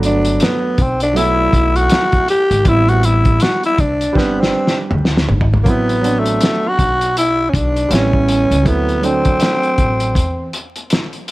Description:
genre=hip hop, jazz-hop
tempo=80 BPM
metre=4/4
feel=swing 59% on 16ths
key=A dorian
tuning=A4 = 440 Hz
part: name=dark concert grand piano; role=accompaniment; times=0.0-10.1 s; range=F#3 to B4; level=-20 LUFS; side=right 3 dB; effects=none
part: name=upright bass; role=bass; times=0.0-10.5 s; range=G1 to E2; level=-18 LUFS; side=equal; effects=none
part: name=cloth-damped thuddy drum kit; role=drums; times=0.0-11.3 s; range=hi-hat, kick drum, snare drum, toms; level=-18 LUFS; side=equal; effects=none
part: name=growling tenor saxophone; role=melody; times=0.1-10.5 s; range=A3 to G4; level=-16 LUFS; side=equal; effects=none
room=small room ambience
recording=vinyl crackle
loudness=-12 LUFS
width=side -18 dB against mid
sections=0.0-5.7 A section; 5.7-11.3 B section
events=tenor saxophone solo 0.0-5.7; drum fill 4.2-5.7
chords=0.0 Gmaj7; 2.7 Am9; 5.7 Am69; 7.9 A7; 8.7 D9

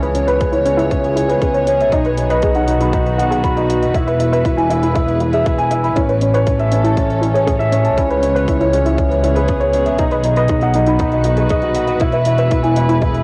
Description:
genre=piano and strings electronica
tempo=119 BPM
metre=4/4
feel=straight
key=E major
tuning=A4 = 439 Hz
part: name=warm studio string section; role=sustained chords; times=0.0-13.2 s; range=D#3 to C#5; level=-25 LUFS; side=equal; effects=cassette tape
part: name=warbly dusty pluck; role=arpeggios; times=0.0-12.9 s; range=D#4 to B4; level=-25 LUFS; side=equal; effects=chorus, vintage 12-bit sampler grit, sidechain pumping, cassette tape, tape echo
part: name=dark baby grand piano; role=riff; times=0.0-13.2 s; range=C#4 to B5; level=-19 LUFS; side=equal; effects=low-pass filter, cassette tape, tape echo
part: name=muted studio double bass section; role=bass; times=0.0-13.2 s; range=E1 to C#2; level=-21 LUFS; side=equal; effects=tube saturation, sidechain pumping
part: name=electronic hi-hat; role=drums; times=0.0-13.2 s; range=none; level=-39 LUFS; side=equal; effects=overdrive, cassette tape
part: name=electronic kick drum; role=drums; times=0.4-13.1 s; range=none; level=-22 LUFS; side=equal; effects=overdrive, cassette tape
room=light reverb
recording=home recording on cassette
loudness=-15 LUFS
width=mono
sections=0.0-13.2 A section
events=filter sweep on grand piano 0.0-13.2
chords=0.0 C#m7; 1.9 B; 3.9 E; 6.0 A; 8.0 C#m7; 10.0 B; 12.0 E

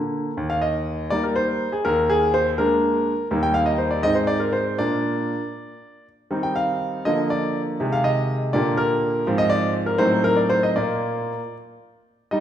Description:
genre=classical-period piano sonatina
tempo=81 BPM (dotted quarters)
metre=6/8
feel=rubato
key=unclear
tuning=A4 = 440 Hz
part: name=bright concert grand piano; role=solo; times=0.0-12.4 s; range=Eb2 to G5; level=-20 LUFS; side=equal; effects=none
room=wet recital hall reverb, RT60 1.6 s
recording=recorded in a church or concert hall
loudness=-19 LUFS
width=side -10 dB against mid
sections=0.4-12.3 A section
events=none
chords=0.4 Eb; 1.9 Bb7/Eb; 3.3 Eb; 4.0 Ab; 4.8 Bb; 6.3 Cm/Eb; 7.1 Bb/D; 7.8 Ab/C; 8.5 Gm/Bb; 9.3 Fm/Ab; 10.0 Adim7; 10.8 Bb

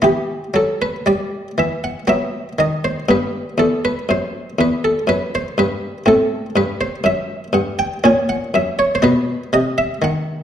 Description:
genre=classical, baroque-style suite movement for harpsichord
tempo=60 BPM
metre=3/4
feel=rubato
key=E minor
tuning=A4 = 440 Hz
part: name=buff-stop harpsichord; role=solo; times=0.0-10.4 s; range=E2 to G#5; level=-16 LUFS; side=equal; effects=none
room=wet recital hall reverb, RT60 1.5 s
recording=dark, warm production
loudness=-16 LUFS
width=side -9 dB against mid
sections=0.0-10.4 A section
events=none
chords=0.0 Em; 2.1 B/F#; 3.1 Em; 6.1 F#dim; 8.0 F#/A#; 9.0 B

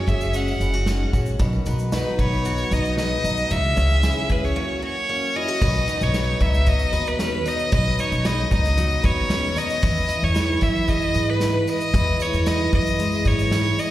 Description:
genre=acoustic pop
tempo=114 BPM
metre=4/4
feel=straight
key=B major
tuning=A4 = 439 Hz
part: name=bright violin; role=melody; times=0.0-13.9 s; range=B4 to F#5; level=-24 LUFS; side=equal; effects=slapback echo, digital delay
part: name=picked twelve-string acoustic guitar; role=accompaniment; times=0.0-13.9 s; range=B2 to B4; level=-26 LUFS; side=left 1 dB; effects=slapback echo
part: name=direct-recorded clean electric guitar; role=arpeggios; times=0.0-6.2 s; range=D#3 to G#4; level=-34 LUFS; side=right 4 dB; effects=wide subtle chorus, slapback echo, digital delay
part: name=upright bass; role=bass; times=0.1-13.7 s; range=F#1 to G#2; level=-23 LUFS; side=equal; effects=none
part: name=unplugged drum kit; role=drums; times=0.1-13.9 s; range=crash cymbal, kick drum, shaker, snare drum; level=-25 LUFS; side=equal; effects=none
part: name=tambourine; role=percussion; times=0.2-13.9 s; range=none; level=-43 LUFS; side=right 2 dB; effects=none
room=light reverb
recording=live gig heard through the venue's PA, recital hall reverb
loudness=-19 LUFS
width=side -14 dB against mid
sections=0.0-5.6 A section; 5.6-13.9 B section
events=break 4.6-5.6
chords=0.0 F#sus2; 1.4 B; 3.5 C#m; 4.6 F#; 5.6 Badd9; 9.8 E

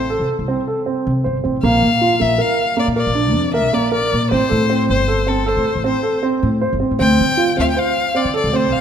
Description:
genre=contemporary instrumental, chamber music in an uneven meter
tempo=157 BPM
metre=7/4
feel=straight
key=Bb lydian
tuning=A4 = 440 Hz
part: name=clear violin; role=melody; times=0.0-8.8 s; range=A4 to G5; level=-19 LUFS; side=left 4 dB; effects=none
part: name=warm grand piano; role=arpeggios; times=0.0-8.8 s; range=Bb3 to C5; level=-18 LUFS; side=right 3 dB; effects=none
part: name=upright bass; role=bass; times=0.0-8.8 s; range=G1 to D3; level=-20 LUFS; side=left 1 dB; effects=none
room=moderate concert hall reverb, RT60 2.2 s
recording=none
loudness=-14 LUFS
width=side -8 dB against mid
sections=0.0-8.8 A section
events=none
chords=0.0 C5; 1.6 Bb; 4.3 Am; 7.0 Dm7

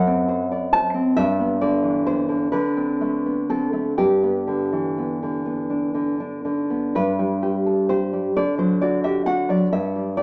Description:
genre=romantic piece for solo classical guitar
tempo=39-46 BPM (dotted quarters)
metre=6/8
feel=rubato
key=G major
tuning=A4 = 436 Hz
part: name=nylon-string guitar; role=solo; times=0.0-10.2 s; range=F#2 to A5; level=-19 LUFS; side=equal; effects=none
room=moderate studio reverb, RT60 0.5 s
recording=rough home demo mix, small speaker sound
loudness=-19 LUFS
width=side -33 dB against mid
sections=0.0-7.0 A section; 7.0-10.2 A section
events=none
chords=0.0 D7/F#; 1.2 G; 2.5 D5; 4.0 G; 8.3 D; 9.7 N.C.

